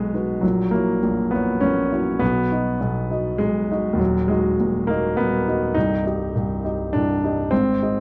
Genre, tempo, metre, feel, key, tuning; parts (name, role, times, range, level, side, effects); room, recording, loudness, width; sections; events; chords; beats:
classical, romantic character piece for solo piano; 101 BPM; 3/4; rubato; B major; A4 = 440 Hz
warm grand piano; solo; 0.0-8.0 s; C1 to D#5; -21 LUFS; equal
light reverb; dark, warm production; -21 LUFS; mono
0.0-8.0 A section
0.4 F#7/A#; 2.2 B; 4.0 B/D#; 5.8 Cm
| 0.42 1.02 1.62 | 2.21 2.80 3.40 | 3.99 4.58 5.17 | 5.75 6.33 6.93 | 7.51